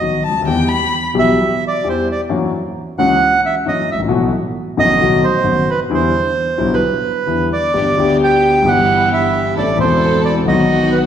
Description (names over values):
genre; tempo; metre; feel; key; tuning
tango; 132 BPM; 4/4; rubato; E minor, G major from 7.7 s; A4 = 440 Hz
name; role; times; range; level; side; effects
bandoneon; melody; 0.0-11.0 s; B4 to G5; -16 LUFS; right 3 dB; none
warm concert grand piano; accompaniment; 0.0-11.1 s; E1 to A4; -16 LUFS; left 3 dB; none
dark violin; second line; 0.2-1.0 s; G5 to B5; -20 LUFS; left 4 dB; none
dark studio string section; stabs; 7.8-11.1 s; G2 to A4; -20 LUFS; right 1 dB; none
room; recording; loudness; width
wet recital hall reverb, RT60 1.7 s; recorded in a church or concert hall; -13 LUFS; side -9 dB against mid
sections
0.0-7.7 A section; 7.7-11.1 B section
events
none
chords
0.5 Em; 2.3 F#7; 4.1 B7sus4; 5.0 B7; 5.9 Em7; 7.7 G; 8.7 Em/G; 9.6 Am; 10.5 B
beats
0.02 | 0.48 0.94 1.39 1.85 | 2.30 2.76 3.21 3.66 | 4.11 4.56 5.01 5.47 | 5.92 6.37 6.83 7.29 | 7.75 8.21 8.66 9.12 | 9.57 10.02 10.47 10.92